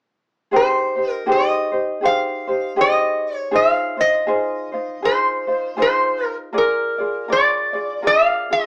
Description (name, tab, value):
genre	Hawaiian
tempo	80 BPM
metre	4/4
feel	swing 61% on 8ths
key	Ab major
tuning	A4 = 439 Hz
part	ukulele	accompaniment	0.5-8.7 s	Eb4 to D5	-21 LUFS	equal	none
part	metal-body resonator slide guitar	melody	0.6-8.7 s	Bb4 to F5	-17 LUFS	equal	none
room	moderate studio reverb, RT60 0.6 s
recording	band playing live in one room, small speaker sound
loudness	-16 LUFS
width	side -32 dB against mid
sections	0.5-8.7 A section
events	none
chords	0.5 Abmaj7; 3.5 Fm7; 6.5 Bb7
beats	| 0.51 1.26 2.02 2.77 | 3.52 4.28 5.03 5.79 | 6.54 7.29 8.04